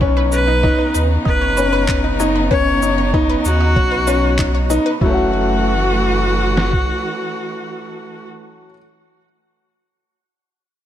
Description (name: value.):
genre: piano and strings electronica.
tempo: 96 BPM.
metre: 4/4.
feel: straight.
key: F# dorian.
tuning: A4 = 440 Hz.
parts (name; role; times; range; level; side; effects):
rich string quartet; sustained chords; 0.0-8.3 s; C#3 to F#4; -23 LUFS; right 1 dB; sidechain pumping.
wide unison pluck; arpeggios; 0.0-5.3 s; D#4 to C#5; -25 LUFS; left 1 dB; phaser, sidechain pumping, ping-pong delay.
clear grand piano; riff; 0.0-8.8 s; F#3 to F#4; -20 LUFS; left 2 dB; none.
warm sub bass; bass; 0.0-6.8 s; F#1 to D#2; -19 LUFS; equal; sidechain pumping.
lo-fi sampler-style drum kit; drums; 0.0-6.9 s; kick drum, snare drum; -19 LUFS; equal; none.
bright viola; melody; 0.3-8.3 s; F#4 to C#5; -21 LUFS; equal; ping-pong delay.
electronic shaker and handclaps; drums; 0.3-4.8 s; none; -26 LUFS; right 1 dB; none.
room: light reverb.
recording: none.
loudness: -14 LUFS.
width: side -11 dB against mid.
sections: 0.0-5.0 A section; 5.0-7.5 B section.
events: drop 0.0-5.0.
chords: 0.0 Badd9; 5.0 F#m7.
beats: | 0.01 0.64 1.26 1.89 | 2.51 3.14 3.76 4.39 | 5.01 5.64 6.26 6.89.